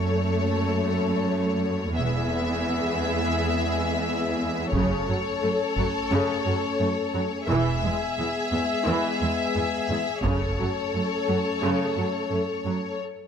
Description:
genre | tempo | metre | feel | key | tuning
cinematic, epic orchestral film score | 87 BPM | 4/4 | straight | F# minor | A4 = 441 Hz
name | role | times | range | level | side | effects
warm symphonic violin section | melody | 0.0-13.0 s | C#5 to E5 | -30 LUFS | left 4 dB | none
warm symphonic violin section | second line | 0.0-13.0 s | G#4 to A4 | -31 LUFS | left 2 dB | none
dark symphonic viola section | accompaniment | 0.0-12.7 s | C#3 to B3 | -30 LUFS | right 1 dB | none
dark French horn section | sustained chords | 0.0-13.0 s | G#3 to C#4 | -32 LUFS | left 4 dB | none
rich symphonic cello section | bass | 0.0-12.7 s | E2 to F#2 | -28 LUFS | right 3 dB | none
warm chamber double bass section | bass | 2.0-10.6 s | E1 to F#1 | -30 LUFS | right 3 dB | none
taiko ensemble | drums | 4.7-6.1, 10.2-11.6 s | none | -32 LUFS | equal | none
room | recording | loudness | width
moderate scoring stage reverb, RT60 1.8 s | close, detailed microphones | -23 LUFS | side -7 dB against mid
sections
0.0-13.3 A section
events
build-up 0.0-13.3; break 13.0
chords
0.0 F#m; 2.0 E; 4.7 F#m; 7.5 E; 10.2 F#m

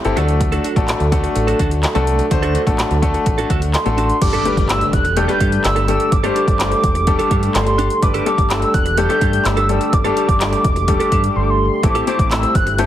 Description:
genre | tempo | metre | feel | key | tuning
dance-pop | 126 BPM | 4/4 | straight | unclear | A4 = 440 Hz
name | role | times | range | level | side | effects
clear baby grand piano | accompaniment | 0.0-12.9 s | G3 to C5 | -20 LUFS | left 4 dB | sidechain pumping
mellow French horn section | sustained chords | 0.0-12.9 s | C3 to A4 | -25 LUFS | right 2 dB | sidechain pumping
direct-recorded clean electric guitar | riff | 0.0-12.8 s | C4 to A4 | -25 LUFS | right 6 dB | wide subtle chorus
deep house drum kit | drums | 0.0-12.9 s | crash cymbal, handclaps, hi-hat, kick drum, snare drum | -19 LUFS | equal | none
deep dub fingered electric bass | bass | 0.1-12.9 s | E1 to G2 | -20 LUFS | equal | sidechain pumping
warm velvety synth lead | melody | 3.7-12.9 s | C6 to G6 | -20 LUFS | right 1 dB | chorus, slapback echo
impact | sound effects | 4.2-6.1 s | none | -29 LUFS | equal | none
room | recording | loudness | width
light reverb | heavily compressed radio sound | -14 LUFS | side -12 dB against mid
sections
0.0-4.2 A section; 4.2-12.9 B section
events
impact 4.2-6.1; silent gap 11.4-11.8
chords
0.2 D; 4.2 Gsus2; 11.8 Am7

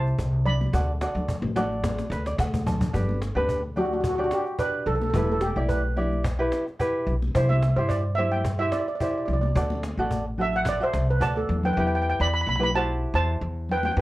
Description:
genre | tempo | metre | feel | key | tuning
calypso | 109 BPM | 4/4 | swing 54% on 16ths | unclear | A4 = 440 Hz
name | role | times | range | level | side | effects
steel pan | melody | 0.0-14.0 s | F#4 to B5 | -26 LUFS | right 2 dB | none
tenor ukulele | accompaniment | 0.0-14.0 s | D4 to A5 | -29 LUFS | equal | none
upright bass | bass | 0.0-14.0 s | E1 to G2 | -26 LUFS | equal | none
cajon | drums | 0.1-11.7 s | none | -32 LUFS | equal | none
congas | percussion | 0.5-14.0 s | none | -32 LUFS | left 1 dB | none
room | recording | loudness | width
moderate small room reverb, RT60 0.5 s | worn, warbling old tape, cassette tape, warbly pitch drift | -22 LUFS | side -17 dB against mid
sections
0.0-2.9 A section; 2.9-11.8 B section; 11.8-14.0 A section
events
drum fill 1.8-2.9, 11.4-11.8; ukulele fill 1.8-2.9; steel pan solo 2.9-11.8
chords
0.0 Cadd9; 0.7 D6; 2.9 G; 5.1 Em; 7.4 C; 9.6 D; 11.8 Emadd9

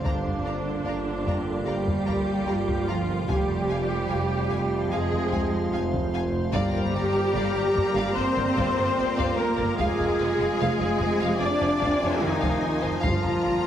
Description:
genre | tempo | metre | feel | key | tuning
cinematic, suspense film score | 74 BPM | 4/4 | straight | G phrygian | A4 = 440 Hz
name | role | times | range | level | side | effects
rich studio violin section | second line | 0.0-13.7 s | Ab4 to F5 | -35 LUFS | equal | none
rich symphonic viola section | accompaniment | 0.0-13.7 s | D4 to D5 | -28 LUFS | left 1 dB | none
clear trombone section | sustained chords | 0.0-13.7 s | C3 to G3 | -37 LUFS | right 2 dB | none
icy glass pad | sustained chords | 0.0-13.7 s | F4 to G5 | -35 LUFS | equal | chorus, built-in reverb
mellow French horn section | sustained chords | 0.0-13.7 s | Bb3 to F4 | -33 LUFS | equal | none
rich symphonic cello section | bass | 0.0-13.7 s | D3 to D4 | -30 LUFS | right 1 dB | none
taiko ensemble | drums | 0.0-13.7 s | none | -33 LUFS | left 1 dB | none
clear symphonic violin section | melody | 0.1-13.7 s | Ab5 to Bb5 | -38 LUFS | left 3 dB | none
rich symphonic double bass section | bass | 0.1-13.5 s | F1 to G1 | -30 LUFS | right 2 dB | none
timpani | percussion | 6.5-7.7 s | G2 | -32 LUFS | left 2 dB | none
rich symphonic violin section | texture | 6.5-12.6 s | Bb5 to F6 | -40 LUFS | left 6 dB | none
room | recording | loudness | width
moderate concert hall reverb, RT60 2.4 s | heavily compressed radio sound, multiband compression | -22 LUFS | side -10 dB against mid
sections
0.0-13.7 A section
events
none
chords
0.1 Gm7; 3.3 Fm; 6.5 Gm7; 9.8 Fm; 13.0 Gm7

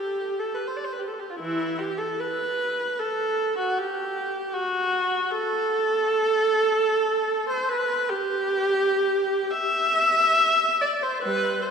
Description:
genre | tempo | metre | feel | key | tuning
classical, free, expressive piece for unaccompanied viola | 54-80 BPM | 4/4 | rubato | A dorian | A4 = 440 Hz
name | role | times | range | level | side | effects
rich viola | solo | 0.0-11.7 s | E3 to E5 | -22 LUFS | equal | none
room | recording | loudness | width
wet church reverb, RT60 3.5 s | heard from further back in the room | -22 LUFS | side -6 dB against mid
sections
0.0-11.7 A section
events
none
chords
none

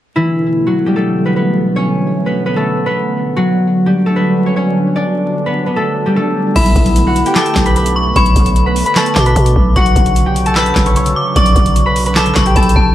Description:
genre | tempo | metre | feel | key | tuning
hip hop, trap | 150 BPM | 4/4 | half-time | B minor | A4 = 440 Hz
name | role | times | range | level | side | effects
concert harp | melody | 0.2-12.9 s | E3 to D6 | -14 LUFS | equal | ping-pong delay
warm analog pad | sustained chords | 0.2-12.9 s | B2 to D4 | -21 LUFS | right 3 dB | chorus
metallic FM bell | second line | 6.6-12.9 s | A5 to E6 | -18 LUFS | left 3 dB | chorus, ping-pong delay
growling 808-style bass | bass | 6.6-12.9 s | B1 to B2 | -14 LUFS | equal | none
booming analog drum machine | drums | 6.6-12.9 s | crash cymbal, handclaps, hi-hat, kick drum, snare drum | -14 LUFS | equal | none
room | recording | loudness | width
light reverb | vinyl crackle, lossy compression artefacts | -11 LUFS | side -12 dB against mid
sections
0.2-6.6 A section; 6.6-12.9 B section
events
none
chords
0.2 Bm7; 3.4 Dmaj7; 6.6 Bm7; 9.8 Dmaj7/B

